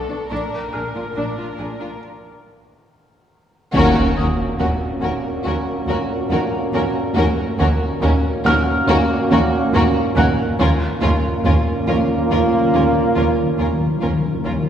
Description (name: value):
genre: cinematic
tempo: 70 BPM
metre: 4/4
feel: straight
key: Eb minor from 3.7 s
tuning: A4 = 439 Hz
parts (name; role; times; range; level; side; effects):
- warm symphonic violin section; melody; 0.0-14.5 s; A4 to A#4; -27 LUFS; left 2 dB; none
- felt-muted upright piano; texture; 0.0-14.7 s; Eb6 to Gb6; -27 LUFS; equal; none
- warm symphonic violin section; second line; 0.1-14.5 s; D4 to G#4; -26 LUFS; left 2 dB; none
- warm studio viola section; accompaniment; 0.1-14.5 s; Db4 to D4; -27 LUFS; right 1 dB; none
- warm studio cello section; bass; 0.1-14.5 s; Eb2 to B2; -24 LUFS; right 1 dB; none
- warm studio double bass section; bass; 0.3-14.5 s; A#1 to Eb2; -23 LUFS; right 1 dB; none
- bright trombone section; sustained chords; 3.7-14.7 s; Bb2 to Bb3; -24 LUFS; right 2 dB; none
- dark French horn section; sustained chords; 3.7-14.7 s; Db4 to Gb4; -23 LUFS; equal; none
- timpani; percussion; 3.7-5.0, 10.6-14.7 s; Eb3; -25 LUFS; left 2 dB; none
- impact; sound effects; 3.7-7.2 s; none; -28 LUFS; equal; none
room: wet concert hall reverb, RT60 1.9 s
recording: heard from further back in the room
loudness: -16 LUFS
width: side -9 dB against mid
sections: 0.0-3.7 A section; 3.7-14.7 B section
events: break 2.0-3.7; band accent 3.7-4.6; impact 3.7-7.2; timpani fill 10.6-14.7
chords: 0.3 A#; 3.7 Ebm7; 10.6 Bbm/Eb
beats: | 0.31 1.17 2.02 2.88 | 3.74 4.59 5.45 6.31 | 7.17 8.02 8.88 9.74 | 10.60 11.45 12.31 13.17 | 14.02